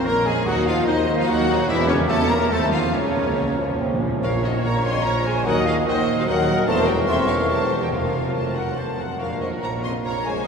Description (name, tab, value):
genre	classical, dramatic, fast romantic movement for symphony orchestra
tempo	145 BPM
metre	3/4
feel	rubato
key	Bb minor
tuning	A4 = 443 Hz
part	bright clarinet	second line	0.0-10.4 s	Db4 to C5	-30 LUFS	left 2 dB	none
part	hollow small flute group	second line	0.0-10.3 s	C#5 to C#6	-29 LUFS	equal	none
part	mellow cor anglais	second line	0.0-10.5 s	G4 to Eb5	-32 LUFS	right 2 dB	none
part	rich symphonic violin section	second line	0.0-10.5 s	C#4 to F5	-28 LUFS	left 2 dB	none
part	rich symphonic viola section	accompaniment	0.0-10.5 s	F3 to Eb5	-29 LUFS	right 1 dB	none
part	mellow French horn section	sustained chords	0.0-10.5 s	C#3 to C#4	-26 LUFS	left 2 dB	none
part	clear symphonic cello section	bass	0.0-10.4 s	Eb2 to Bb3	-30 LUFS	right 2 dB	none
part	mellow tuba	bass	0.0-10.4 s	E1 to Eb2	-28 LUFS	right 3 dB	none
part	warm symphonic violin section	melody	0.1-10.5 s	C#5 to C#6	-30 LUFS	left 3 dB	none
part	warm symphonic double bass section	bass	0.1-10.5 s	E1 to E2	-28 LUFS	right 2 dB	none
part	timpani	percussion	2.9-4.2, 7.9-8.5 s	F2 to Bb2	-32 LUFS	equal	none
part	mellow bassoon	accompaniment	3.4-10.3 s	Eb3 to Db4	-29 LUFS	right 1 dB	none
room	wet cathedral reverb, RT60 6.6 s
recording	minimal, uncompressed stereo recording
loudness	-18 LUFS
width	side -6 dB against mid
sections	0.0-4.2 A section; 4.2-10.5 A section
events	timpani fill 2.9-4.2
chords	0.5 Ebm; 1.7 Edim7; 2.5 F7/Eb; 2.9 Bbm/Db; 4.2 Bbm; 5.5 Ebm; 6.7 Edim7; 7.9 Bbm/F; 9.2 Bbm